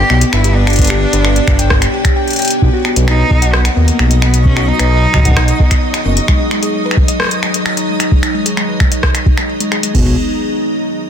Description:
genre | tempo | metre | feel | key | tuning
IDM | 131 BPM | 4/4 | straight | B major | A4 = 440 Hz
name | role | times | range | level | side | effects
clear cello | melody | 0.0-6.1 s | A#3 to G4 | -19 LUFS | right 1 dB | dub echo
icy glass pad | sustained chords | 0.0-10.2 s | F#3 to D#5 | -19 LUFS | right 1 dB | chorus, built-in reverb, vintage 12-bit sampler grit
dark detuned saw bass | bass | 0.0-6.2, 9.9-10.2 s | F#1 to D#2 | -12 LUFS | equal | none
harp-like synth pluck | arpeggios | 0.1-10.2 s | G#3 to G5 | -20 LUFS | left 4 dB | chorus, dub echo
electro analog drum machine | drums | 0.1-9.9 s | finger snaps, hi-hat, rim click | -18 LUFS | left 1 dB | soft clipping on snare, ping-pong delay
electro analog drum machine | drums | 0.8-10.1 s | crash cymbal, kick drum, toms | -13 LUFS | equal | none
twinkling granular texture | texture | 3.7-10.0 s | D#5 | -27 LUFS | right 5 dB | built-in reverb
room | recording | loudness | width
little or no reverb | dense, heavily limited modern master | -10 LUFS | side -8 dB against mid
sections
0.0-2.6 A section; 2.6-9.9 B section; 9.9-11.1 C section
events
break 2.2-2.6; filter sweep on synth pluck 2.6-9.9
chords
0.0 G; 2.6 B

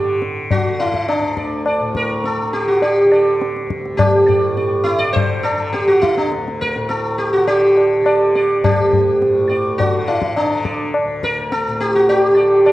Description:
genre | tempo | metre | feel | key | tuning
indian classical, Hindustani | 104 BPM | 4/4 | straight | unclear | A4 = 443 Hz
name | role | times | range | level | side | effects
sitar | melody | 0.0-12.7 s | D4 to D5 | -15 LUFS | right 1 dB | none
tanpura | drone | 0.0-12.7 s | D2 to D3 | -25 LUFS | equal | none
tabla | percussion | 0.2-12.7 s | none | -20 LUFS | left 2 dB | none
room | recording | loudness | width
moderate concert hall reverb, RT60 1.8 s | worn, warbling old tape, cassette tape, warbly pitch drift | -14 LUFS | side -16 dB against mid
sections
0.0-12.7 A section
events
none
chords
none

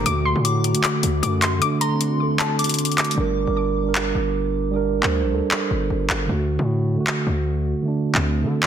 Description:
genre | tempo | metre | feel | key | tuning
hip hop, trap | 154 BPM | 4/4 | half-time | G harmonic minor | A4 = 439 Hz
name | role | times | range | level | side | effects
warbly dusty pluck | melody | 0.0-3.2 s | A5 to D6 | -27 LUFS | left 4 dB | chorus, low-pass filter, tape echo
soft synth bell | second line | 0.0-3.1 s | C6 to D6 | -31 LUFS | left 2 dB | chorus, phaser, tape echo
mellow tine electric piano | accompaniment | 0.0-8.7 s | D3 to C5 | -22 LUFS | right 4 dB | low-pass filter
glassy FM pad | sustained chords | 0.0-3.1 s | D3 to F#4 | -31 LUFS | left 4 dB | ensemble chorus, built-in reverb
distorted 808-style bass | bass | 0.0-8.5 s | G1 to D3 | -24 LUFS | left 1 dB | distortion
trap drum kit | drums | 0.1-8.7 s | handclaps, hi-hat | -24 LUFS | left 1 dB | none
room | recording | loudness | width
light reverb, digital ambience | dense, heavily limited modern master | -19 LUFS | side -9 dB against mid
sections
0.0-3.2 A section; 3.2-8.7 B section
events
kick muted 1.6-3.2; hi-hats muted 3.2-8.7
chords
0.1 D; 3.2 Gm; 6.3 D

